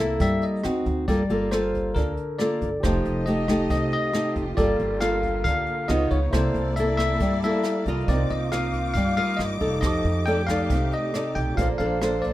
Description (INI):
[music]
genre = bossa nova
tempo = 137 BPM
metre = 4/4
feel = straight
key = unclear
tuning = A4 = 440 Hz
[part]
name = bell-like tine electric piano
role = melody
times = 0.0-12.3 s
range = Bb4 to G5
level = -28 LUFS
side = left 2 dB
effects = none
[part]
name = nylon-string guitar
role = accompaniment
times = 0.0-12.3 s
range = C3 to Eb5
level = -25 LUFS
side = equal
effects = none
[part]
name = upright bass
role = bass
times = 0.0-12.3 s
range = F1 to G2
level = -28 LUFS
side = equal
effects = none
[part]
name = jazz brush drum kit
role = drums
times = 0.2-12.3 s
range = hi-hat, kick drum, rim click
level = -30 LUFS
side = right 1 dB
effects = none
[part]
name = dark baby grand piano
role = accompaniment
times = 2.8-12.3 s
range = Eb4 to D6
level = -36 LUFS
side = right 5 dB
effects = none
[part]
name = warm studio string section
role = sustained chords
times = 2.8-12.3 s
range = A3 to D6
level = -33 LUFS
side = equal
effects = none
[sound]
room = moderate studio reverb, RT60 0.6 s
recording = rough home demo mix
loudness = -21 LUFS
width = side -15 dB against mid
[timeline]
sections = 0.0-12.3 A section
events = none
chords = 0.0 C6; 0.7 D7b9; 1.1 Gm9; 2.8 F9; 4.6 Gm9; 5.9 C#9; 6.3 C13; 8.1 Cm11; 9.8 F13; 11.6 Bbmaj9